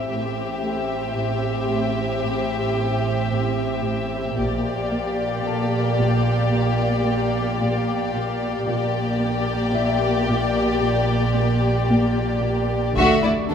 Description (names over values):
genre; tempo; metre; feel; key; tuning
cinematic, suspense film score; 56 BPM; 4/4; straight; unclear; A4 = 443 Hz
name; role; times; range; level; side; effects
warm studio violin section; melody; 0.0-13.5 s; A4 to E5; -29 LUFS; left 6 dB; none
clear studio violin section; second line; 0.0-13.5 s; D4 to G4; -26 LUFS; left 4 dB; none
dark studio viola section; accompaniment; 0.0-13.5 s; A3 to C4; -28 LUFS; left 1 dB; none
glass harmonica; sustained chords; 0.0-13.5 s; F#4 to G5; -28 LUFS; right 2 dB; none
rich studio double bass section; bass; 0.0-13.5 s; A1 to D2; -29 LUFS; right 3 dB; none
warm studio cello section; bass; 0.0-13.5 s; D2 to Bb2; -27 LUFS; right 2 dB; none
Celtic harp; texture; 0.0-13.5 s; E4 to E6; -34 LUFS; left 8 dB; none
warm studio cello section; riff; 0.1-13.5 s; A2 to D4; -29 LUFS; right 1 dB; none
taiko ensemble; drums; 4.4-6.5, 13.0-13.5 s; none; -34 LUFS; equal; none
room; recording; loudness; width
wet concert hall reverb, RT60 1.9 s; minimal, uncompressed stereo recording; -19 LUFS; side -8 dB against mid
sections
0.0-13.5 A section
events
none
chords
0.0 Am7; 4.4 Bb6; 13.0 Dadd9